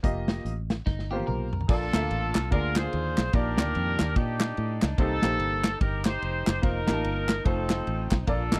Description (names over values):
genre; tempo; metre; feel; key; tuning
uptempo gospel; 146 BPM; 4/4; swing 60% on 8ths; Bb major; A4 = 440 Hz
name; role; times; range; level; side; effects
warm upright piano; accompaniment; 0.0-8.6 s; Bb2 to A5; -34 LUFS; equal; none
fingered electric bass; bass; 0.0-8.6 s; F1 to Bb2; -33 LUFS; equal; none
modern studio drum kit; drums; 0.0-8.6 s; crash cymbal, hi-hat, kick drum, ride cymbal, snare drum, toms; -29 LUFS; equal; none
clean electric guitar; second line; 0.9-1.7 s; Eb4 to Bb4; -40 LUFS; equal; subtle chorus
warm horn section; melody; 1.7-8.6 s; C4 to C5; -33 LUFS; equal; none
group handclap; percussion; 1.9-8.6 s; none; -38 LUFS; equal; none
room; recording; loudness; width
little or no reverb; dry, close 1970s-style studio recording; -27 LUFS; mono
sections
0.0-1.7 A section; 1.7-8.6 B section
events
drum fill 0.9-1.7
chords
0.0 F9sus4; 1.7 Bbmaj7; 2.5 Bb7/D; 3.3 Ebmaj7/Bb; 5.0 Cm7; 6.6 F7sus4; 7.5 F7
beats
| 0.04 0.45 0.86 1.28 | 1.69 2.10 2.52 2.93 | 3.34 3.75 4.16 4.58 | 4.99 5.40 5.81 6.22 | 6.63 7.04 7.46 7.87 | 8.28